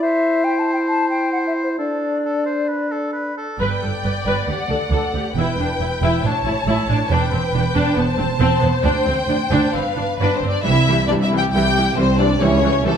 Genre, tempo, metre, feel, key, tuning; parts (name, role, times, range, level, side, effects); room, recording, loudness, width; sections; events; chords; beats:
cinematic, heroic adventure film score; 136 BPM; 4/4; straight; G major; A4 = 440 Hz
clear oboe; second line; 0.0-3.6 s; A4 to C5; -26 LUFS; equal
hollow concert flute; second line; 0.0-3.3 s; C5 to A5; -22 LUFS; left 3 dB
mellow clarinet; second line; 0.0-3.3 s; D4 to E4; -22 LUFS; equal
warm symphonic violin section; melody; 3.6-13.0 s; A4 to A5; -23 LUFS; left 4 dB
dark symphonic violin section; second line; 3.6-13.0 s; A3 to D5; -24 LUFS; left 1 dB
rich symphonic viola section; accompaniment; 3.6-12.9 s; E3 to B4; -22 LUFS; equal
dark symphonic cello section; bass; 3.6-13.0 s; C2 to A2; -22 LUFS; right 2 dB
warm symphonic double bass section; bass; 3.6-13.0 s; E1 to D2; -23 LUFS; right 4 dB
clear trombone section; sustained chords; 10.6-12.6 s; G3 to E4; -26 LUFS; right 4 dB
wet recital hall reverb, RT60 1.5 s; -16 LUFS; side -8 dB against mid
0.0-3.6 A section; 3.6-10.6 B section; 10.6-13.0 C section
0.0 Am7/E; 1.8 D5; 3.6 G; 4.5 D; 5.4 Em; 6.2 A; 7.1 Em7; 8.0 Am/E; 8.8 G5/D; 9.7 G7; 10.6 C; 12.4 A7/C#
| 0.02 0.45 0.89 1.33 | 1.79 2.25 2.70 3.15 | 3.60 4.04 4.49 4.92 | 5.37 5.81 6.24 6.67 | 7.10 7.54 7.97 8.40 | 8.84 9.28 9.73 10.19 | 10.64 11.09 11.53 11.97 | 12.41 12.85